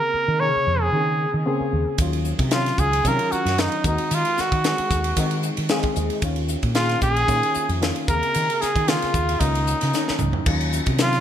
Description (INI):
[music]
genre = electric jazz fusion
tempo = 113 BPM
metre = 4/4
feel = swing 54% on 16ths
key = Eb dorian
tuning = A4 = 441 Hz
[part]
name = breathy trumpet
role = melody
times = 0.0-11.2 s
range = Eb4 to Db5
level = -23 LUFS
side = equal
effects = ping-pong delay
[part]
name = barky reed electric piano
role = accompaniment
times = 0.0-11.2 s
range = C3 to F5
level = -27 LUFS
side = left 2 dB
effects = ensemble chorus
[part]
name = fretless electric bass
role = bass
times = 0.1-11.2 s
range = Bb1 to Eb3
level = -24 LUFS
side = equal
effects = wide subtle chorus
[part]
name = crisp fusion drum kit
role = drums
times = 2.0-11.2 s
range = crash cymbal, hi-hat, kick drum, ride cymbal, snare drum, toms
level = -24 LUFS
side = equal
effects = none
[sound]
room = moderate plate reverb, RT60 1.2 s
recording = bright 1980s-style digital production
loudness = -19 LUFS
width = side -10 dB against mid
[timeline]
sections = 0.0-10.5 A section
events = reed electric piano fill 5.4-6.2; drum fill 9.9-10.5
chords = 0.0 Bbm9/Eb; 2.0 Ebm9; 3.9 Ab7/Eb; 6.2 Db69; 8.1 Bbm9/Eb; 9.4 Db69; 10.5 Ebm9